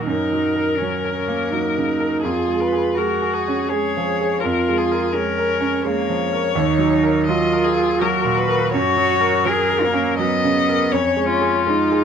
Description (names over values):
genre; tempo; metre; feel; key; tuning
neoclassical piano and strings; 83 BPM; 3/4; rubato; unclear; A4 = 440 Hz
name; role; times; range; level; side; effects
muted violin; melody; 0.0-12.0 s; F4 to Eb5; -22 LUFS; left 7 dB; none
muted cello; second line; 0.0-12.0 s; Bb3 to Ab4; -21 LUFS; right 2 dB; none
bright concert grand piano; accompaniment; 0.0-12.0 s; Eb2 to Bb4; -22 LUFS; right 4 dB; none
room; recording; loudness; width
wet studio reverb, RT60 0.5 s; none; -17 LUFS; side -7 dB against mid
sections
0.0-12.0 A section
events
none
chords
0.1 Gb; 2.2 Db/F; 4.4 Bbm7/F; 6.6 Ebmadd9; 8.7 Gb; 10.9 Db/F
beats
| 0.07 0.80 1.52 | 2.25 2.97 3.69 | 4.42 5.13 5.84 | 6.55 7.28 8.00 | 8.72 9.46 10.19 | 10.93 11.67